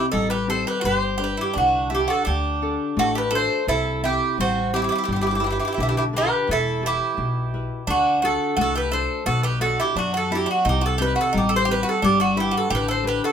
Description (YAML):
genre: greek folk, Greek bouzouki band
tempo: 86 BPM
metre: 2/4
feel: straight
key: G major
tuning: A4 = 437 Hz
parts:
  - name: Greek bouzouki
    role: melody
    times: 0.0-13.3 s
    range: F#4 to C5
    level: -22 LUFS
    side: right 1 dB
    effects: none
  - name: Greek bouzouki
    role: second line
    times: 0.0-13.3 s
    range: C4 to A4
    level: -26 LUFS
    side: right 3 dB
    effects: none
  - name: nylon-string guitar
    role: accompaniment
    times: 0.0-13.3 s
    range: B2 to F#5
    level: -27 LUFS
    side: left 4 dB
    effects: none
  - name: upright bass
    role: bass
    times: 0.1-13.2 s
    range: E1 to F#2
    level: -28 LUFS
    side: equal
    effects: none
room: moderate studio reverb, RT60 0.5 s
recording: minimal, uncompressed stereo recording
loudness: -19 LUFS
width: side -8 dB against mid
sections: 0.0-3.7 A section; 3.7-13.3 A section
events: speeding up 0.0-13.3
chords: 0.0 Cm; 0.8 G; 2.3 D; 3.7 C; 5.1 G; 6.5 Em; 7.9 D; 9.3 Bm; 10.7 Cm; 12.0 G